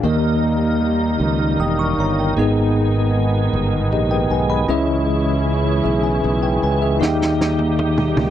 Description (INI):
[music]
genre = slow gospel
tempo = 52 BPM (dotted quarters)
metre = 6/8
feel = straight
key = G# harmonic minor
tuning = A4 = 440 Hz
[part]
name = bell-like tine electric piano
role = accompaniment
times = 0.0-8.3 s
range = G#2 to D#6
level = -19 LUFS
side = left 1 dB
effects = fast stereo tremolo
[part]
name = muted studio string section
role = sustained chords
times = 0.0-8.3 s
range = D#3 to G4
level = -28 LUFS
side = right 1 dB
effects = none
[part]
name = tonewheel organ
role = sustained chords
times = 0.0-8.3 s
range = D#3 to A#4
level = -24 LUFS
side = right 3 dB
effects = fast rotary speaker, chorus vibrato
[part]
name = modern bright fingered electric bass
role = bass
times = 0.0-8.3 s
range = E1 to D#2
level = -20 LUFS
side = equal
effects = none
[part]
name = warm soul drum kit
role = drums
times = 7.0-8.3 s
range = snare drum, toms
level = -23 LUFS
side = equal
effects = none
[sound]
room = light reverb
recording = dry, close 1970s-style studio recording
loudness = -16 LUFS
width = side -11 dB against mid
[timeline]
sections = 0.0-8.3 A section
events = drum fill 7.0-8.3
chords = 0.0 D#; 2.4 G#m; 4.7 C#m; 7.0 D#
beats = | 0.04 1.20 | 2.36 3.52 | 4.68 5.85 | 7.01 8.17